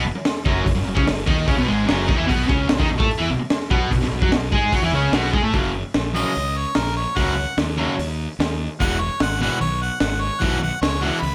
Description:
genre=garage rock duo or trio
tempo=147 BPM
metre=4/4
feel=straight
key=F# major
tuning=A4 = 440 Hz
part: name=fuzz guitar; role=riff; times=0.0-11.2 s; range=E2 to A4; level=-24 LUFS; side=equal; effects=distortion
part: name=fuzz fingered electric bass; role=bass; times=0.0-11.3 s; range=E1 to A2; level=-28 LUFS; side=equal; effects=overdrive
part: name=crunchy breakbeat drum kit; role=drums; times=0.2-11.3 s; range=hi-hat, kick drum, snare drum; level=-25 LUFS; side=equal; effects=none
part: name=bright harmonica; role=melody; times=6.2-11.3 s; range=A#4 to B5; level=-27 LUFS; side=equal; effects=overdrive
room=light reverb, small room ambience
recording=none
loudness=-21 LUFS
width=mono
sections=0.0-5.5 A section; 5.5-11.3 B section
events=none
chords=0.0 F#5; 2.3 B5; 5.5 F#; 8.8 E

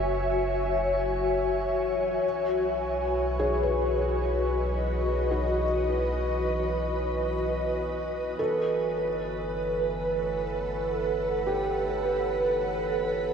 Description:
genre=ambient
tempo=free time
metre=none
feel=none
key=unclear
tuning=A4 = 440 Hz
part: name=ethereal airy pad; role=sustained chords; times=0.0-13.3 s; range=F#4 to G#5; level=-26 LUFS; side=equal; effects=ensemble chorus, built-in reverb, shimmer reverb
part: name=felt-muted upright piano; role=arpeggios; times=0.0-13.3 s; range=F#4 to B4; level=-33 LUFS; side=left 1 dB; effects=ping-pong delay, shimmer reverb
part: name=warm sub bass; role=bass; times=0.0-13.3 s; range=F#1 to B1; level=-33 LUFS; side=equal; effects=none
part: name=overtone-sweeping drone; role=drone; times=0.0-13.3 s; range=E3 to C#5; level=-37 LUFS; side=equal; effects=chorus, built-in reverb
room=wet lush hall reverb, RT60 2.7 s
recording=dreamy mix soaked in reverb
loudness=-25 LUFS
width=side -7 dB against mid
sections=0.0-13.3 A section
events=fade-in on synth drone 0.0-13.3; fade-out on sub bass 0.0-13.3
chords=0.0 F#m7; 2.2 B; 8.4 Gmaj7

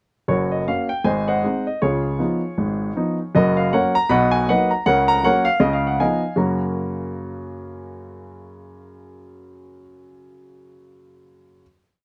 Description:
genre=jazz, stride piano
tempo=158 BPM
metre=4/4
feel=swing 59% on 8ths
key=F# major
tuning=A4 = 440 Hz
part: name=warm grand piano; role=solo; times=0.3-11.6 s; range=F#1 to B5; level=-20 LUFS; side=equal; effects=none
room=light reverb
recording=close, detailed microphones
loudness=-20 LUFS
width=mono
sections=0.3-6.4 A section; 6.4-9.4 final chord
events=none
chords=0.3 F#; 1.0 G#7; 1.8 C#9; 3.3 F#; 4.1 Bmaj7; 4.9 F#/C#; 5.6 C#9; 6.4 F#

